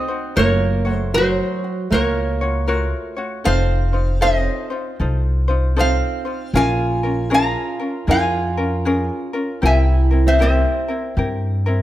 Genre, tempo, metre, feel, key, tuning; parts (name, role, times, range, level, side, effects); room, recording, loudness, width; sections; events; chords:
Hawaiian; 78 BPM; 4/4; swing 64% on 8ths; Bb minor; A4 = 440 Hz
metal-body resonator slide guitar; melody; 0.0-11.1 s; Gb4 to Bb5; -21 LUFS; equal
fingerpicked old ladder-braced acoustic guitar; second line; 0.0-11.1 s; Gb3 to F4; -25 LUFS; right 4 dB
ukulele; accompaniment; 0.0-11.8 s; C4 to Db5; -24 LUFS; left 3 dB
upright bass; bass; 0.4-11.8 s; F1 to G2; -18 LUFS; equal
light reverb; close, detailed microphones; -16 LUFS; side -14 dB against mid
0.0-11.8 A section
0.4 Gbmaj7; 3.5 F7; 6.5 Bbm7; 9.6 C7